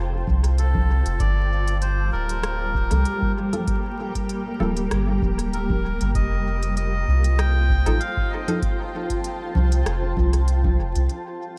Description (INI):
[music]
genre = ambient dub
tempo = 97 BPM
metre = 4/4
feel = swing 54% on 16ths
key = unclear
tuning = A4 = 440 Hz
[part]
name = granular cloud pad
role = sustained chords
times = 0.0-11.6 s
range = G3 to A5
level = -31 LUFS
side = equal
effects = built-in reverb
[part]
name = soft dub sub bass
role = bass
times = 0.0-11.1 s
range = D1 to C2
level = -23 LUFS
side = equal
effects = none
[part]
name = electronic kick drum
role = drums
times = 0.3-10.8 s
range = none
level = -29 LUFS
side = equal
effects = studio reverb
[part]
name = organic electronic drum kit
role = drums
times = 0.3-11.2 s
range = congas, hi-hat, rim click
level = -34 LUFS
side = equal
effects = studio reverb, dub echo
[part]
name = melodica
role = melody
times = 0.6-8.6 s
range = A4 to G5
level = -32 LUFS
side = equal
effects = dub echo
[part]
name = filtered dub chord stab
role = stabs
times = 2.9-8.6 s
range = F3 to A4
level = -35 LUFS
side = equal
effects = ensemble chorus, dub echo
[sound]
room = light reverb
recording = vinyl crackle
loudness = -22 LUFS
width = mono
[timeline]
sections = 0.0-11.1 A section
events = none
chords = 0.0 F; 1.2 Gm9; 6.1 F7